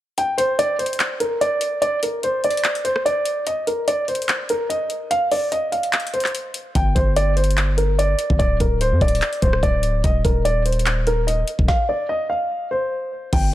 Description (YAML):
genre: hip hop, trap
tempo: 146 BPM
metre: 4/4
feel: half-time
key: unclear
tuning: A4 = 440 Hz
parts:
  - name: dark baby grand piano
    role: melody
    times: 0.2-13.5 s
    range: Bb4 to G5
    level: -20 LUFS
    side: equal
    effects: low-pass filter
  - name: trap drum kit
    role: drums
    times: 0.2-13.4 s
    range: crash cymbal, handclaps, hi-hat, kick drum, rim click, snare drum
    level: -22 LUFS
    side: equal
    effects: none
  - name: long sustained 808-style bass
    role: bass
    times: 6.8-13.5 s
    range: D1 to F2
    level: -20 LUFS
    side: equal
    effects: none
room: light reverb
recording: none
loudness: -18 LUFS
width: side -14 dB against mid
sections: 0.2-13.3 A section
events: kick muted 0.2-6.8; break 5.9-6.8; stop 11.7-13.3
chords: 0.2 N.C.; 6.8 G5; 8.4 N.C.; 10.0 Cm7/Eb; 11.7 N.C.